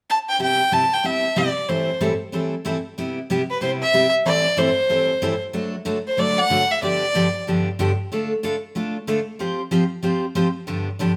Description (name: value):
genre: country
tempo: 187 BPM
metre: 4/4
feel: swing 62% on 8ths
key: C major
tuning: A4 = 439 Hz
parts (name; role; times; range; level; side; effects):
- clear fiddle; melody; 0.1-7.4 s; B4 to A5; -21 LUFS; equal; none
- picked steel-string acoustic guitar; accompaniment; 0.4-11.1 s; G2 to C5; -24 LUFS; equal; none
room: moderate stone room reverb, RT60 1.1 s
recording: band playing live in one room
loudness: -21 LUFS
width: mono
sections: 0.4-3.0 A section; 3.0-11.2 B section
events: none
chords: 0.4 Cmaj7; 1.7 Am7; 3.0 Cmaj7; 4.3 Am7; 5.5 D; 6.8 G7; 8.1 Dm; 9.4 Fsus2